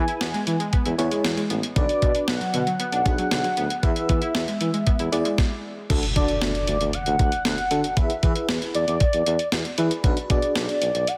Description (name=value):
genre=synth-pop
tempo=116 BPM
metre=4/4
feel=straight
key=unclear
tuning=A4 = 441 Hz
part: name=warm velvety synth lead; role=melody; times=0.0-11.2 s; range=D5 to G#5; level=-29 LUFS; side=equal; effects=chorus
part: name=FM electric piano with tremolo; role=accompaniment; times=0.0-10.9 s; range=D4 to D5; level=-32 LUFS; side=equal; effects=none
part: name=analog pluck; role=arpeggios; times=0.0-5.4 s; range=D3 to E4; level=-32 LUFS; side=equal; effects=chorus, tape echo
part: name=clear tuba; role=bass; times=0.0-11.0 s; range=A1 to E3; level=-30 LUFS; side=equal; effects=none
part: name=clean 12-bit digital drum machine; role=drums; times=0.1-11.2 s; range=crash cymbal, hi-hat, kick drum, snare drum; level=-26 LUFS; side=equal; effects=none
part: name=impact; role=sound effects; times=5.9-8.0 s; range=none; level=-33 LUFS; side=equal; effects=none
room=moderate lush hall reverb, RT60 2.1 s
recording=dense, heavily limited modern master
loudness=-23 LUFS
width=mono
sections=0.0-5.9 A section; 5.9-11.2 B section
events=stop 5.4-5.9; impact 5.9-8.0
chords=0.0 E; 1.8 Bm; 3.8 E; 5.9 D; 8.0 E; 10.0 Bm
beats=0.21 0.73 1.25 | 1.76 2.28 2.80 3.31 | 3.83 4.35 4.87 5.38 | 5.90 6.42 6.93 7.45 | 7.97 8.49 9.00 9.52 | 10.04 10.56 11.07